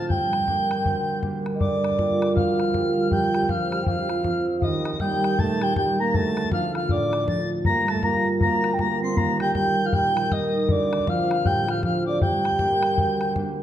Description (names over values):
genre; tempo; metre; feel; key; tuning
celtic folk, Celtic hornpipe; 158 BPM; 4/4; swing 62% on 8ths; G minor; A4 = 439 Hz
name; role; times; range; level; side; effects
mellow hollow baroque flute; melody; 0.0-13.4 s; D5 to C6; -25 LUFS; equal; none
tin whistle; second line; 0.0-13.3 s; D6 to C7; -30 LUFS; left 3 dB; none
concert harp; accompaniment; 0.0-13.6 s; D2 to F4; -25 LUFS; right 1 dB; none
bodhran; percussion; 0.1-13.5 s; none; -28 LUFS; left 2 dB; none
mellow French horn; second line; 1.6-13.4 s; D3 to C4; -29 LUFS; right 2 dB; none
room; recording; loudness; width
wet recital hall reverb, RT60 1.3 s; none; -20 LUFS; side -11 dB against mid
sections
0.0-1.6 A section; 1.6-13.6 A section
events
none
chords
0.1 Gm; 1.6 Gm7; 3.1 Dm7/F; 4.6 Eb; 6.1 Dm; 7.7 Gm7; 9.2 Eb; 10.7 Dm7; 12.2 Gm